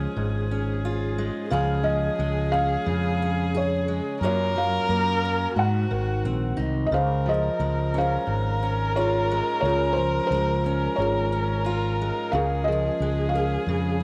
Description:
acoustic folk-pop ballad; 89 BPM; 4/4; straight; Db major; A4 = 443 Hz
warm viola; second line; 0.0-14.0 s; Gb4 to Bb4; -32 LUFS; equal
fingerpicked steel-string acoustic guitar; accompaniment; 0.0-14.0 s; Gb2 to Ab4; -32 LUFS; equal
mellow fretless electric bass; bass; 0.0-14.0 s; Ab1 to Ab2; -29 LUFS; equal
felt-muted upright piano; melody; 1.5-14.0 s; F4 to Gb5; -29 LUFS; equal
moderate echo chamber reverb, RT60 1.8 s, small room ambience; -24 LUFS; mono
0.0-6.9 A section; 6.9-14.0 A section
0.0 Db; 1.5 Dbadd9; 4.2 Gbmaj7; 5.6 Ab7; 6.9 Dbmaj7; 12.3 Bbm7/Db

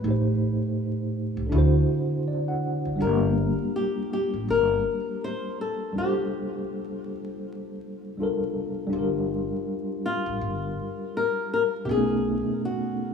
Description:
hip hop; 81 BPM; 4/4; swing 59% on 16ths; A4 = 440 Hz
flamenco guitar; melody; 0.0-13.1 s; F4 to C5; -27 LUFS; left 4 dB; tape echo
tine electric piano; accompaniment; 0.0-13.1 s; A2 to F#5; -27 LUFS; equal; overdrive, fast tremolo
upright bass; bass; 0.0-12.4 s; F#1 to D2; -27 LUFS; equal
moderate lush hall reverb, RT60 2.7 s; rough home demo mix, vinyl crackle, small room ambience; -24 LUFS; side -6 dB against mid
0.0-8.9 A section; 8.9-13.1 B section
break 0.0-3.0, 6.0-8.9
0.0 Am7b5; 1.5 D7; 3.0 Gm7; 11.9 B9

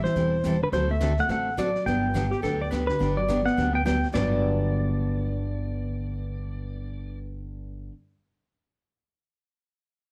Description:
country, western swing; 211 BPM; 4/4; swing 60% on 8ths; G major; A4 = 438 Hz
pedal steel guitar; melody; 0.0-7.2 s; B4 to G5; -30 LUFS; equal
hollow-body jazz guitar; second line; 0.0-7.9 s; D3 to B3; -32 LUFS; equal
upright bass; bass; 0.0-7.9 s; E1 to D2; -32 LUFS; equal
jazz brush drum kit; drums; 0.0-4.4 s; brushed snare drum, hi-hat, kick drum, snare drum, toms; -40 LUFS; equal
picked steel-string acoustic guitar; accompaniment; 0.2-7.9 s; G2 to A4; -34 LUFS; equal
clean lap steel guitar; second line; 2.3-7.2 s; G4 to D5; -36 LUFS; equal
moderate studio reverb, RT60 0.9 s; -26 LUFS; mono
0.0-3.0 A section; 3.0-4.1 B section; 4.1-6.4 C section
0.0 Am7; 0.7 D7; 1.9 Gmaj7

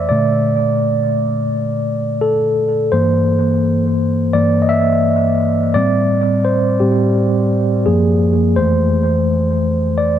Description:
R&B; 85 BPM; 4/4; swing 59% on 16ths; G dorian; A4 = 437 Hz
mellow tine electric piano; solo; 0.0-10.2 s; F2 to E5; -13 LUFS; equal; auto-pan, analog delay
moderate spring reverb, RT60 2.0 s; echo-heavy mix, nothing above 10.5 kHz; -13 LUFS; side -10 dB against mid
0.0-2.9 A section; 2.9-10.2 B section
tine electric piano solo 0.0-2.9, 2.9-10.2
0.1 Bbmaj7; 2.9 Gm6; 5.7 Am7; 7.9 F#maj9; 8.6 Fmaj7

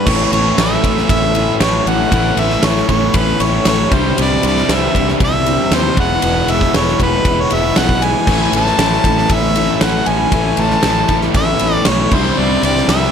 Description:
classic rock; 117 BPM; 4/4; straight; A4 = 441 Hz
clear harmonica; melody; 0.0-13.1 s; B4 to A5; -18 LUFS; equal
picked steel-string acoustic guitar; accompaniment; 0.0-13.1 s; E2 to E4; -25 LUFS; left 10 dB
distorted electric guitar; riff; 0.0-13.1 s; A2 to E4; -20 LUFS; right 12 dB; distortion
overdriven electric guitar; riff; 0.0-13.1 s; E2 to C4; -20 LUFS; left 12 dB
growling fingered electric bass; bass; 0.1-13.1 s; E1 to D#2; -20 LUFS; equal; overdrive
huge arena drum kit; drums; 0.1-13.1 s; crash cymbal, kick drum, ride cymbal, snare drum; -17 LUFS; right 1 dB
light reverb, studio ambience; -12 LUFS; side -7 dB against mid
0.1-13.1 A section
0.1 A; 3.9 Cadd9; 6.0 E; 8.3 A; 12.1 Cadd9

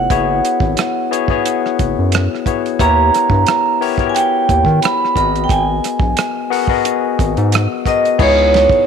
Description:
R&B, neo-soul; 89 BPM; 4/4; swing 55% on 16ths; G# minor; A4 = 440 Hz
vibraphone with medium hard mallets; melody; 0.0-8.9 s; C#5 to B5; -16 LUFS; right 4 dB
barky tine electric piano; accompaniment; 0.0-8.9 s; B3 to F#5; -18 LUFS; left 11 dB; overdrive
round analog bass; bass; 0.0-8.7 s; F#1 to D#3; -17 LUFS; equal
warm soul drum kit; drums; 0.1-8.9 s; crash cymbal, hi-hat, kick drum, ride cymbal, rim click, snare drum; -19 LUFS; right 3 dB
moderate echo chamber reverb, RT60 2.0 s; 1960s-style stereo; -12 LUFS; side -7 dB against mid
0.0-8.2 A section
0.1 F#9sus4; 2.8 D#7b9b13; 5.2 G#m9; 8.2 C#m9

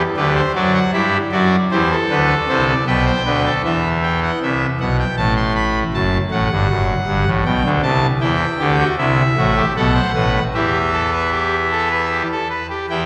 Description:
classical, baroque-style 3-part fugue for pipe organ; 78 BPM; 3/4; straight; G major, E minor from 8.2 s; A4 = 440 Hz
pipe organ, trumpet; solo; 0.2-13.1 s; F#1 to C6; -17 LUFS; equal
wet church reverb, RT60 2.5 s; -17 LUFS; mono
0.0-3.6 A section; 3.6-12.9 B section
0.0 G; 0.6 D/F#; 1.3 D7; 2.9 G/B; 3.6 Em; 5.2 Am; 5.9 F#m; 7.5 G/B; 8.2 Em; 9.0 C; 9.8 B5; 10.5 Em

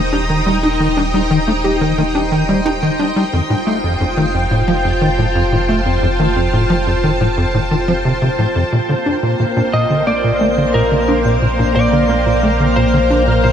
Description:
ambient, sequencer-driven space music; 89 BPM; 4/4; straight; Bb major; A4 = 441 Hz
string machine, full ensemble; sustained chords; 0.0-13.5 s; Bb3 to Bb5; -17 LUFS; equal; ensemble chorus
round analog bass; bass; 0.0-13.5 s; Eb1 to Bb1; -21 LUFS; equal
twinkling granular texture; texture; 0.1-13.5 s; C5 to G5; -30 LUFS; right 1 dB; built-in reverb
tight sequencer bass; riff; 0.1-13.5 s; F2 to G4; -16 LUFS; equal; lush chorus, ping-pong delay
lightly driven lead guitar; melody; 9.7-13.5 s; Bb4 to Eb5; -17 LUFS; equal; ping-pong delay
moderate huge ambient reverb, RT60 8.7 s; -13 LUFS; side -8 dB against mid
0.0-13.5 A section
0.0 Eb; 3.3 Fadd9; 8.7 Bbadd9

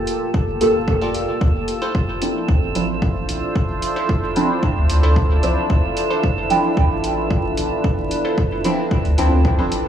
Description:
dub techno; 112 BPM; 4/4; straight; A4 = 441 Hz
deep dark ambient pad; sustained chords; 0.0-9.9 s; Bb3 to C5; -24 LUFS; equal; chorus, built-in reverb, sidechain pumping
drifting glass-harmonics texture; texture; 0.0-9.9 s; A4; -28 LUFS; right 5 dB; chorus, built-in reverb, sidechain pumping
electronic hi-hat; drums; 0.1-9.8 s; -31 LUFS; equal
electronic kick drum; drums; 0.3-9.6 s; -21 LUFS; equal
soft dub sub bass; bass; 0.5-9.9 s; F1 to D2; -20 LUFS; equal; sidechain pumping
deep mellow chord stab; stabs; 0.6-9.7 s; F3 to A4; -21 LUFS; right 1 dB; chorus, phaser, sidechain pumping, dub echo
wavetable chord stab; riff; 1.0-9.8 s; E4 to F5; -30 LUFS; left 2 dB; sidechain pumping, dub echo
light reverb; dry, gritty hardware recording, vinyl crackle, small room ambience; -16 LUFS; side -9 dB against mid
0.0-9.9 A section
0.0 Gm9; 1.4 Dm9

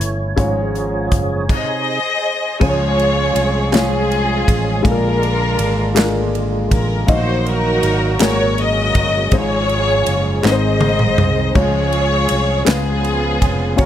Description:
slow gospel; 54 BPM (dotted quarters); 6/8; straight; Db major; A4 = 442 Hz
warm upright piano; accompaniment; 0.0-13.9 s; Ab2 to Eb5; -21 LUFS; left 3 dB
percussive tonewheel organ; sustained chords; 0.0-13.9 s; C3 to C#5; -24 LUFS; right 5 dB; chorus vibrato, slow rotary speaker
warm French horn section; sustained chords; 0.0-1.5 s; E3 to F4; -33 LUFS; right 2 dB
fingered electric bass; bass; 0.0-13.9 s; F1 to Db2; -20 LUFS; equal
natural country drum kit; drums; 0.0-13.9 s; crash cymbal, hi-hat, kick drum, ride cymbal, snare drum, toms; -19 LUFS; equal
warm symphonic string section; melody; 1.5-13.9 s; Cb4 to Eb5; -19 LUFS; left 1 dB
group handclap; percussion; 3.7-13.0 s; -23 LUFS; right 5 dB
little or no reverb; -14 LUFS; side -11 dB against mid
0.0-2.6 A section; 2.6-13.9 B section
tonewheel organ solo 0.0-2.6; drum fill 10.4-11.6
0.4 Db/Ab; 1.5 Ab; 2.6 Db; 4.8 Bb7; 7.1 Ebm/Bb; 8.2 Ab9sus4; 9.3 Db/Ab; 10.4 Ab; 11.6 Db; 12.7 Db7

